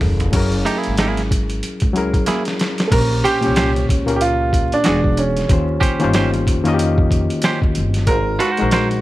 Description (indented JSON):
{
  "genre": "R&B, neo-soul",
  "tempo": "93 BPM",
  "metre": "4/4",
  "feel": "swing 59% on 16ths",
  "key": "unclear",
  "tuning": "A4 = 441 Hz",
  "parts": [
    { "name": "barky reed electric piano", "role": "accompaniment", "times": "0.0-9.0 s", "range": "Bb2 to Eb5", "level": "-20 LUFS", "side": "left 2 dB", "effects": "overdrive, spring reverb" },
    { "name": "upright bass", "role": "bass", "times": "0.0-9.0 s", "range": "E1 to F2", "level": "-21 LUFS", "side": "equal", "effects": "none" },
    { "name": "boom bap sampler-style drum kit", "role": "drums", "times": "0.0-9.0 s", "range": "crash cymbal, hi-hat, kick drum, snare drum, toms", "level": "-20 LUFS", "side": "equal", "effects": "none" },
    { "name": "semi-hollow electric guitar", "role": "second line", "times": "0.7-8.9 s", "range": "Bb3 to C5", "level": "-22 LUFS", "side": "right 4 dB", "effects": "none" },
    { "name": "warm grand piano", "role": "melody", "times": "2.9-9.0 s", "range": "Db4 to Bb4", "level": "-19 LUFS", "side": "right 3 dB", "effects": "none" }
  ],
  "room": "light reverb",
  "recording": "vinyl crackle",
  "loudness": "-15 LUFS",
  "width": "side -16 dB against mid",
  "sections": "0.3-2.9 A section; 2.9-9.0 B section",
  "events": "drum fill 0.0-0.3, 2.3-2.9",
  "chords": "0.3 Gb9; 2.9 Bbm69; 4.8 E9; 5.5 Eb13; 8.1 Ab9"
}